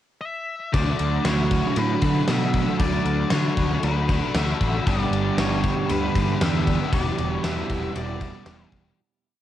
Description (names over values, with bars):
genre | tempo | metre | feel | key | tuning
rock, shoegaze and dream pop | 116 BPM | 4/4 | straight | D major | A4 = 440 Hz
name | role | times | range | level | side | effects
octave-fuzz lead guitar | melody | 0.2-8.7 s | B4 to E5 | -31 LUFS | left 3 dB | distortion, cassette tape, tape echo
hollow soft pad | sustained chords | 0.7-9.0 s | D4 to B5 | -35 LUFS | equal | chorus, cassette tape
overdriven electric guitar | riff | 0.7-9.0 s | E2 to G4 | -28 LUFS | left 8 dB | ensemble chorus, cassette tape
overdriven semi-hollow guitar | riff | 0.7-9.0 s | E2 to G4 | -27 LUFS | right 7 dB | reverse reverb, cassette tape
growling picked electric bass | bass | 0.7-8.9 s | E1 to D3 | -25 LUFS | equal | overdrive
gated 80s drum kit | drums | 0.7-8.8 s | kick drum, ride cymbal, snare drum | -26 LUFS | equal | cassette tape
room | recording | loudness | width
studio reverb | home recording on cassette | -20 LUFS | side -12 dB against mid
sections
0.0-0.7 pickup bar; 0.7-9.0 verse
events
fade-out 6.9-9.0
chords
0.0 N.C.; 0.7 D6; 4.9 Gmaj7; 6.9 Em7